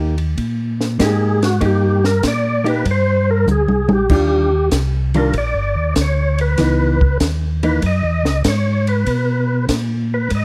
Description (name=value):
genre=soul jazz organ trio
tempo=97 BPM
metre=4/4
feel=swing 69% on 8ths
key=C minor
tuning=A4 = 438 Hz
part: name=archtop guitar, miked and amplified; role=accompaniment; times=0.0-7.8 s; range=Eb3 to G4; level=-22 LUFS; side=equal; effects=none
part: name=mellow tonewheel organ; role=bass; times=0.0-10.4 s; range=G1 to B2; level=-20 LUFS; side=equal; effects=chorus vibrato, slow rotary speaker
part: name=compact cocktail drum kit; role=drums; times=0.2-10.4 s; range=crash cymbal, hi-hat, kick drum, ride cymbal, snare drum, toms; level=-22 LUFS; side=equal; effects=none
part: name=percussive tonewheel organ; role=melody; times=1.0-10.4 s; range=F#4 to Eb5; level=-22 LUFS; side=equal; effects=slow rotary speaker, overdrive, chorus vibrato
room=moderate studio reverb, RT60 0.8 s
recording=dark, warm production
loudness=-17 LUFS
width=mono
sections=0.0-4.1 A section; 4.1-10.4 A section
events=tonewheel organ solo 0.0-10.4; drum fill 3.5-4.1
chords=0.0 Cm7 (rootless); 4.1 Ebmaj9; 6.6 Dbm9; 7.8 Gbsus2; 9.1 B5